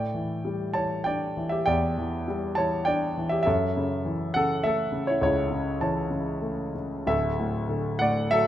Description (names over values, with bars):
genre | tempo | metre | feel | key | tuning
classical, lyrical solo piano | 100 BPM | 3/4 | uneven beats, rubato | D major | A4 = 441 Hz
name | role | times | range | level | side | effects
warm concert grand piano | solo | 0.0-8.5 s | D1 to A5 | -24 LUFS | equal | none
room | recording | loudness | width
light reverb | close, detailed microphones | -24 LUFS | side -12 dB against mid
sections
0.0-7.1 A section; 7.1-8.5 A section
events
none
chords
0.0 A7sus4; 3.5 F#m7; 7.1 Dadd9